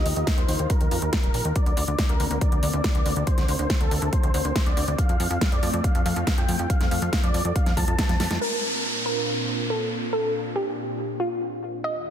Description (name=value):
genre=uplifting trance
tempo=140 BPM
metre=4/4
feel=straight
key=Bb major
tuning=A4 = 443 Hz
part: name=big supersaw lead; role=melody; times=0.0-8.4 s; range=A4 to A5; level=-30 LUFS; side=equal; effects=cassette tape, sidechain pumping, low-pass filter, ping-pong delay
part: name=lush unison pad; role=sustained chords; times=0.0-12.1 s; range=Eb2 to Bb4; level=-32 LUFS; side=equal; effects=chorus, phaser, sidechain pumping
part: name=plucky analog bass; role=bass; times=0.0-8.4 s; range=Eb1 to F2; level=-27 LUFS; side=equal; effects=sidechain pumping
part: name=big-room dance drum kit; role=drums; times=0.1-8.4 s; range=hi-hat, snare drum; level=-30 LUFS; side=equal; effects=low-pass filter on snare, low-pass filter on hats, low-pass filter on room
part: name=electronic kick drum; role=drums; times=0.3-8.1 s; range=none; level=-23 LUFS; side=equal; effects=none
part: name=glassy wavetable pluck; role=second line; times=8.4-12.1 s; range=F4 to Eb5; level=-27 LUFS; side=equal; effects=chorus, tape echo
part: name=downlifter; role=sound effects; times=8.4-11.8 s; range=none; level=-29 LUFS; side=equal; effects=none
room=light reverb, digital ambience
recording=dense, heavily limited modern master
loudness=-21 LUFS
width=side -9 dB against mid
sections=0.0-8.4 A section; 8.4-12.1 B section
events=filter sweep on analog synth pad 0.0-8.4, 8.4-12.1; drum fill 8.1-8.4; band accent 8.3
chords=0.0 Ebadd9; 1.6 Bbadd9/D; 5.0 F; 8.4 Bbadd9